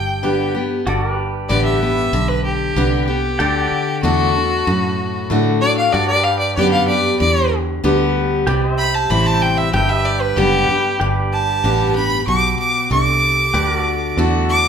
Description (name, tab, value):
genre	honky-tonk and classic country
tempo	95 BPM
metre	4/4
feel	straight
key	G major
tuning	A4 = 440 Hz
part	clear fiddle	melody	0.0-14.7 s	F#4 to D6	-18 LUFS	left 1 dB	none
part	picked steel-string acoustic guitar	accompaniment	0.0-14.7 s	G2 to G4	-20 LUFS	left 3 dB	none
part	fingered electric bass	bass	0.0-14.7 s	F#1 to A2	-20 LUFS	right 1 dB	none
part	clear upright piano	accompaniment	0.2-14.6 s	D4 to C5	-25 LUFS	right 5 dB	none
part	pedal steel guitar	sustained chords	0.9-14.7 s	F#4 to F#5	-25 LUFS	right 1 dB	none
room	moderate large studio reverb, RT60 0.9 s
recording	band playing live in one room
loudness	-14 LUFS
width	side -7 dB against mid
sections	0.9-11.0 A section; 11.0-14.7 A section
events	fiddle solo 0.9-14.7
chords	0.0 G; 3.4 D; 5.9 G; 8.5 C; 9.7 G; 13.5 D